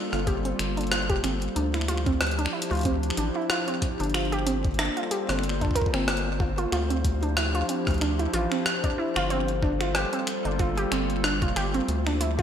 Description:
IDM; 93 BPM; 4/4; swing 56% on 16ths; A4 = 442 Hz
warbly tape-like pad; sustained chords; 0.0-12.4 s; F3 to C5; -31 LUFS; left 1 dB; chorus, built-in reverb, vintage 12-bit sampler grit, shimmer reverb
warbly dusty pluck; arpeggios; 0.0-12.4 s; C4 to Bb4; -29 LUFS; right 2 dB; chorus, ping-pong delay, shimmer reverb
rubbery square bass; bass; 0.1-12.4 s; F1 to D2; -28 LUFS; equal
jungle sampler-style drum kit; drums; 0.1-12.4 s; finger snaps, hi-hat, rim click; -30 LUFS; equal; studio reverb, gated reverb, digital delay
electronic kick drum; drums; 0.3-12.4 s; -27 LUFS; equal; studio reverb
moderate plate reverb, RT60 2.2 s; bright 1980s-style digital production; -23 LUFS; side -8 dB against mid
0.0-12.4 A section
0.0 Gm11; 1.6 Dm11; 4.1 Gm11; 6.7 Dm11; 9.3 Gm11; 11.9 Dm11

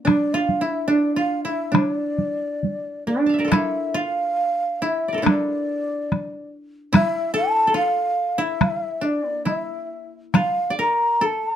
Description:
japanese traditional, Japanese chamber music; 67-73 BPM; 2/4; rubato; D hirajoshi; A4 = 440 Hz
koto; second line; 0.0-11.6 s; D4 to A5; -24 LUFS; right 1 dB
breathy mellow shakuhachi; melody; 0.1-11.6 s; D5 to Bb5; -23 LUFS; equal
taiko ensemble; percussion; 0.1-10.5 s; -18 LUFS; equal
moderate studio reverb, RT60 0.5 s; dark, warm production; -19 LUFS; side -10 dB against mid
0.0-3.5 A section; 3.5-11.6 B section

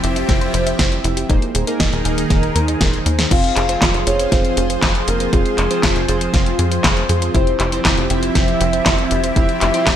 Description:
italo disco; 119 BPM; 4/4; straight; F harmonic minor; A4 = 440 Hz
lush unison pad; sustained chords; 0.0-10.0 s; Eb3 to C5; -23 LUFS; equal; chorus, phaser
soft round pluck; arpeggios; 0.0-9.9 s; Eb4 to C6; -28 LUFS; equal; chorus, tape echo
chorused polysynth; stabs; 0.0-10.0 s; Bb3 to F5; -24 LUFS; right 3 dB
tight sequencer bass; bass; 0.0-10.0 s; Eb1 to F2; -21 LUFS; equal
house drum kit; drums; 0.0-10.0 s; crash cymbal, handclaps, hi-hat, snare drum; -20 LUFS; left 1 dB; gated reverb
electronic kick drum; drums; 0.3-10.0 s; -18 LUFS; equal
soft octave-layered synth lead; melody; 3.3-10.0 s; Ab4 to F5; -22 LUFS; left 2 dB; chorus, phaser, tape echo
light reverb; -14 LUFS; side -10 dB against mid
0.0-3.3 A section; 3.3-10.0 B section
drum fill 2.8-3.3
0.0 C/F; 1.3 Ebsus4; 3.3 Fm; 7.3 C/F

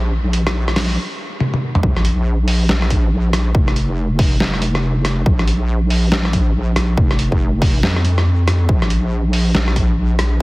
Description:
deep dubstep; 140 BPM; 4/4; swing 61% on 16ths, half-time; A4 = 441 Hz
wobble bass; bass; 0.0-10.4 s; F1 to F2; -16 LUFS; equal; chorus
trip hop sampler-style drum kit; drums; 0.3-10.3 s; hi-hat, rim click, snare drum, toms; -21 LUFS; equal
electronic kick drum; drums; 1.8-9.9 s; -16 LUFS; equal
little or no reverb; heavily compressed radio sound; -14 LUFS; side -21 dB against mid
0.0-1.8 A section; 1.8-10.4 B section
build-up 0.0-1.8; drum fill 1.4-1.8; drop 1.8-10.4

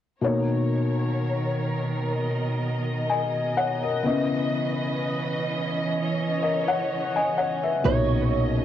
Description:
contemporary R&B; 63 BPM; 4/4; swing 54% on 16ths; B major; A4 = 440 Hz
felt-muted upright piano; accompaniment; 0.2-8.6 s; A#2 to G#5; -24 LUFS; left 2 dB; cassette tape
muted studio string section; sustained chords; 0.2-8.6 s; B2 to D#5; -29 LUFS; right 2 dB; cassette tape
warm 808-style bass; bass; 7.8-8.6 s; B1; -28 LUFS; right 2 dB
direct-recorded clean electric guitar; melody; 7.9-8.6 s; C#5; -27 LUFS; right 10 dB; ensemble chorus, analog delay
moderate small room reverb, RT60 0.5 s; home recording on cassette; -23 LUFS; side -11 dB against mid
0.2-7.8 A section
0.2 Bmaj9; 4.0 C#m9; 7.8 Bmaj9

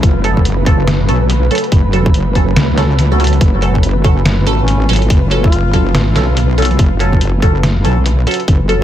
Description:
deep dubstep; 142 BPM; 4/4; swing 61% on 16ths, half-time; F# harmonic minor; A4 = 440 Hz
bowed-like drone; sustained chords; 0.0-8.8 s; C#3 to E#4; -23 LUFS; left 2 dB; built-in reverb
wobble bass; bass; 0.0-8.8 s; F#1 to C#2; -13 LUFS; equal; chorus
electronic kick drum; drums; 0.0-8.6 s; -12 LUFS; equal
trip hop sampler-style drum kit; drums; 0.0-8.8 s; hi-hat, snare drum; -19 LUFS; equal; analog delay
flickering grainy texture; texture; 0.0-8.8 s; B4; -24 LUFS; right 1 dB; built-in reverb
filtered dub chord stab; stabs; 0.2-8.8 s; F#3 to A4; -19 LUFS; right 2 dB; phaser, wide subtle chorus, analog delay
mellow duduk; melody; 4.6-6.0 s; C#4 to E#4; -26 LUFS; left 3 dB; dub echo
little or no reverb; echo-heavy mix; -10 LUFS; side -11 dB against mid
0.0-8.8 A section
0.0 F#m

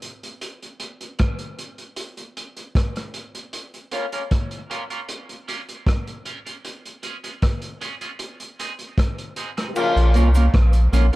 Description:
dub reggae; 77 BPM; 4/4; straight; Bb minor; A4 = 440 Hz
vintage drum kit; drums; 0.0-11.2 s; crash cymbal, hi-hat, kick drum, rim click; -25 LUFS; equal
electric guitar at the edge of break-up; accompaniment; 3.9-11.2 s; Ab3 to Bb4; -28 LUFS; right 2 dB; wide subtle chorus, high-pass filter, dub echo
mellow horn section; second line; 9.8-10.1 s; Db3 to F4; -24 LUFS; left 2 dB; dub echo
cabasa; percussion; 9.8-11.1 s; -44 LUFS; equal
warm sub bass; bass; 10.0-11.1 s; Bb1 to C2; -15 LUFS; equal
studio ambience; dark, warm production; -20 LUFS; side -18 dB against mid
0.0-9.8 A section; 9.8-11.2 B section
break 0.0-3.5
0.0 N.C.; 3.5 Bbm; 6.6 Db; 8.2 Ab; 9.8 Bbm

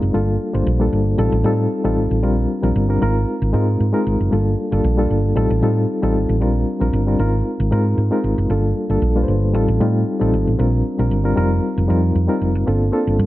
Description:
disco; 115 BPM; 4/4; straight; A4 = 441 Hz
reed electric piano; accompaniment; 0.0-13.3 s; G3 to F5; -19 LUFS; left 1 dB; fast tremolo
hollow-body short-scale fingered electric bass; bass; 0.0-13.3 s; F1 to A2; -18 LUFS; equal
light reverb; -16 LUFS; side -16 dB against mid
0.0-12.7 A section
0.1 Gm9; 1.2 F7/A; 2.2 Bb6; 3.0 Ab6; 4.3 Gm9; 5.4 F7/A; 6.4 Bb6; 7.2 Ab6; 8.5 Gm9; 9.5 F7/A; 10.6 Bb6; 11.4 F7sus4; 12.7 Bbmaj7

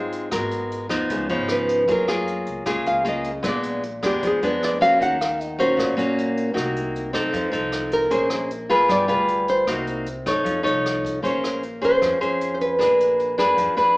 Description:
bossa nova; 154 BPM; 4/4; straight; Bb minor; A4 = 437 Hz
nylon-string guitar; accompaniment; 0.0-14.0 s; Ab2 to Db5; -22 LUFS; equal
upright bass; bass; 0.0-14.0 s; G1 to Gb2; -36 LUFS; equal
jazz brush drum kit; drums; 0.1-13.9 s; hi-hat, kick drum, rim click; -34 LUFS; equal
nylon-string guitar; melody; 1.3-13.9 s; G4 to Gb5; -21 LUFS; equal
moderate large studio reverb, RT60 1.2 s; band playing live in one room, small speaker sound; -19 LUFS; side -23 dB against mid
0.0-11.2 A section; 11.2-14.0 B section
nylon-string guitar solo 0.0-11.2
0.3 Abm9; 1.1 Db9; 1.9 Gbmaj9; 3.4 Bb7b9; 5.0 Ebm7; 6.6 Cm7b5; 7.3 F7; 8.1 Bbm9; 8.9 G7b9; 9.7 Cm7b5; 10.5 F7b13; 11.2 Bbm9; 12.8 Bb7b9

